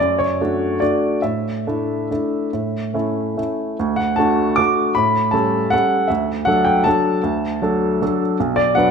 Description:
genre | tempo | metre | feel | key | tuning
classical, piano waltz | 135-164 BPM | 3/4 | rubato | D major | A4 = 438 Hz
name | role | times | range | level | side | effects
warm upright piano | solo | 0.0-8.9 s | B1 to D6 | -16 LUFS | equal | none
room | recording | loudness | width
wet recital hall reverb, RT60 1.6 s | minimal, uncompressed stereo recording | -16 LUFS | side -6 dB against mid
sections
0.0-3.8 A section; 3.8-8.9 B section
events
none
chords
0.0 D/F#; 1.2 Asus4; 2.5 A; 3.8 D; 5.0 A7; 6.1 D; 8.4 Bm

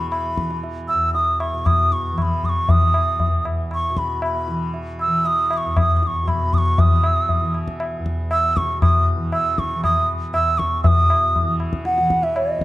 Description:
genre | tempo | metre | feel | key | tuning
indian classical, Hindustani | 118 BPM | 4/4 | straight | unclear | A4 = 440 Hz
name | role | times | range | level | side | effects
bansuri | melody | 0.0-12.6 s | D#5 to E6 | -20 LUFS | right 1 dB | tape echo
tanpura | drone | 0.0-12.6 s | E2 to E3 | -26 LUFS | equal | none
tabla | percussion | 0.1-12.6 s | none | -20 LUFS | left 2 dB | none
room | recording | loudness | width
light reverb | dark, warm production | -17 LUFS | side -16 dB against mid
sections
0.0-10.8 A section; 10.8-12.6 B section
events
none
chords
none

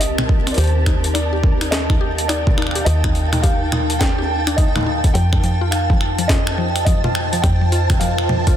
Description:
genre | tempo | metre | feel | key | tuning
IDM | 105 BPM | 4/4 | swing 62% on 16ths | unclear | A4 = 440 Hz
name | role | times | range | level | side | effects
felt-muted upright piano | melody | 0.0-8.6 s | C5 to G5 | -26 LUFS | equal | vintage 12-bit sampler grit, dub echo
granular cloud pad | sustained chords | 0.0-8.6 s | C4 to G5 | -25 LUFS | equal | built-in reverb, vintage 12-bit sampler grit
woody FM bass | bass | 0.0-8.6 s | C2 to F2 | -20 LUFS | equal | none
jungle sampler-style drum kit | drums | 0.0-8.6 s | finger snaps, hi-hat, snare drum, toms | -23 LUFS | equal | overdrive, soft clipping on snare
flickering grainy texture | texture | 0.0-8.6 s | A5 | -28 LUFS | right 3 dB | built-in reverb, sidechain pumping
mallet-like synth pluck | arpeggios | 0.2-8.5 s | F3 to G4 | -27 LUFS | left 4 dB | chorus, cassette tape, ping-pong delay
electronic kick drum | drums | 0.3-8.6 s | none | -17 LUFS | equal | overdrive
room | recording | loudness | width
digital ambience | dense, heavily limited modern master | -15 LUFS | side -10 dB against mid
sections
0.0-8.6 A section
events
none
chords
0.0 Cm7; 0.6 Ebmaj9; 5.2 F7sus4

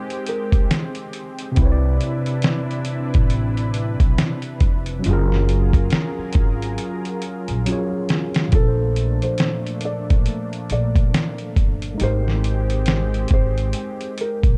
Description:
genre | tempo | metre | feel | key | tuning
lo-fi hip hop | 69 BPM | 4/4 | swing 59% on 16ths | unclear | A4 = 440 Hz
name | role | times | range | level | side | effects
felt-muted upright piano | melody | 0.0-0.7, 8.5-14.6 s | A4 to D5 | -31 LUFS | equal | low-pass filter
tine electric piano | accompaniment | 0.0-14.6 s | Bb2 to D5 | -29 LUFS | equal | low-pass filter
lush unison pad | sustained chords | 0.0-14.6 s | C3 to B4 | -33 LUFS | equal | chorus, low-pass filter
lo-fi sampler-style drum kit | drums | 0.1-14.6 s | hi-hat, kick drum, snare drum | -21 LUFS | equal | none
upright bass | bass | 0.5-14.6 s | F1 to C2 | -24 LUFS | equal | none
room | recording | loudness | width
digital ambience | dark, warm production | -20 LUFS | mono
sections
0.0-8.5 A section; 8.5-14.6 B section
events
drum fill 6.8-8.5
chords
0.0 Abmaj9; 1.6 Cmaj9; 5.1 Gbmaj9; 8.5 Bbmaj9; 12.0 Abmaj9

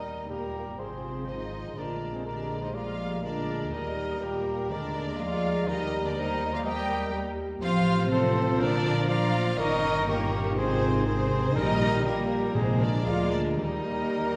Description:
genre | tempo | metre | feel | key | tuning
quick classical-period movement for symphony orchestra | 122 BPM | 4/4 | straight | Eb major | A4 = 440 Hz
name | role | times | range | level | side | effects
dark chamber violin section | melody | 0.0-14.4 s | Bb4 to G5 | -37 LUFS | equal | none
rich chamber violin section | second line | 0.0-14.4 s | Bb3 to G4 | -40 LUFS | equal | none
silver concert flute | second line | 0.0-14.4 s | Bb5 to Db6 | -40 LUFS | equal | none
dark bassoon | accompaniment | 0.0-14.4 s | Eb3 to Ab3 | -39 LUFS | equal | none
rich chamber viola section | accompaniment | 0.0-14.4 s | Eb3 to Db4 | -38 LUFS | equal | none
dark French horn section | sustained chords | 0.0-14.4 s | D4 to C5 | -38 LUFS | equal | none
mellow trumpet | stabs | 0.0-14.4 s | G4 to Eb5 | -36 LUFS | equal | none
dark chamber cello section | bass | 0.0-14.4 s | Bb2 to G3 | -35 LUFS | equal | none
rich chamber double bass section | bass | 0.0-14.4 s | G1 to Eb2 | -36 LUFS | equal | none
timpani | percussion | 4.7-5.4, 11.6-14.3 s | Bb2 to Eb3 | -35 LUFS | equal | none
room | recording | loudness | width
wet scoring stage reverb, RT60 1.5 s | heard from further back in the room | -28 LUFS | mono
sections
0.0-14.4 A section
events
none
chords
0.0 Eb; 0.8 Fm/Ab; 1.8 Bb7; 3.7 Eb; 4.7 Bb7/Eb; 5.7 Eb; 7.6 F/A; 8.6 Bb; 9.6 Eb7/G; 10.6 Ab; 11.6 Eb/Bb; 12.6 Bb7; 13.6 Eb

